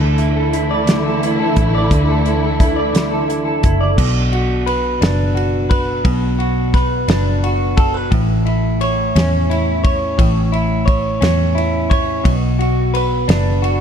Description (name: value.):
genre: six-eight pop ballad.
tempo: 58 BPM (dotted quarters).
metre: 6/8.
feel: straight.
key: unclear.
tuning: A4 = 439 Hz.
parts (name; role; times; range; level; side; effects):
direct-recorded clean electric guitar; accompaniment; 0.0-13.8 s; A2 to D5; -18 LUFS; equal; double-tracked left and right.
dark studio string section; sustained chords; 0.0-3.9 s; D3 to E4; -20 LUFS; equal; none.
vintage muted fingered electric bass; bass; 0.0-13.8 s; F#1 to E2; -18 LUFS; equal; none.
damped 70s drum kit; drums; 0.2-13.8 s; crash cymbal, hi-hat, kick drum, ride cymbal, snare drum; -19 LUFS; equal; none.
room: light reverb, small room ambience.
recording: none.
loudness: -14 LUFS.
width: side -8 dB against mid.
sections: 0.0-4.0 A section; 4.0-13.8 B section.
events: none.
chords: 0.0 Dsus2; 4.0 Bm; 8.1 A; 12.2 Bm.